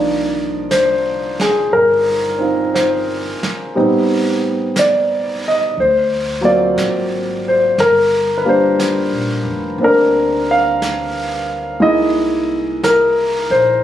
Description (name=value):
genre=jazz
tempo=59 BPM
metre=4/4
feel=swing 66% on 8ths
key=C minor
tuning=A4 = 440 Hz
part: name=warm concert grand piano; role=accompaniment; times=0.0-13.8 s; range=F3 to F5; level=-14 LUFS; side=equal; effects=none
part: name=upright bass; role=bass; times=0.0-13.8 s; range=F1 to D2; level=-30 LUFS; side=right 1 dB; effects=none
part: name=jazz brush drum kit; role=drums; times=0.7-13.8 s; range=brushed snare drum, hi-hat, snare drum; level=-26 LUFS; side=right 2 dB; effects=none
room=little or no reverb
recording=recorded on a phone in the room, studio reverb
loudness=-13 LUFS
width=side -11 dB against mid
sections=0.0-13.8 A section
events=none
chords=0.0 Cm11; 3.8 Am7b5; 5.8 D7alt; 7.8 Gm7; 11.8 C7alt